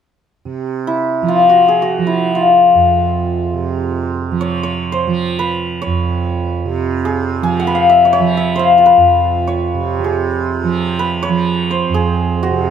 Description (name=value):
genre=indian classical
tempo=free time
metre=none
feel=none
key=F raga todi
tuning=A4 = 441 Hz
part: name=tanpura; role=drone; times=0.5-12.7 s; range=F2 to F3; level=-17 LUFS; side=right 5 dB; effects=none
part: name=santur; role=melody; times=0.9-12.7 s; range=E4 to Ab5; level=-14 LUFS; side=left 3 dB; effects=none
room=light reverb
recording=close, detailed microphones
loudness=-12 LUFS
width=side -8 dB against mid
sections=0.5-10.0 A section; 10.0-12.7 B section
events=none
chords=none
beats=free time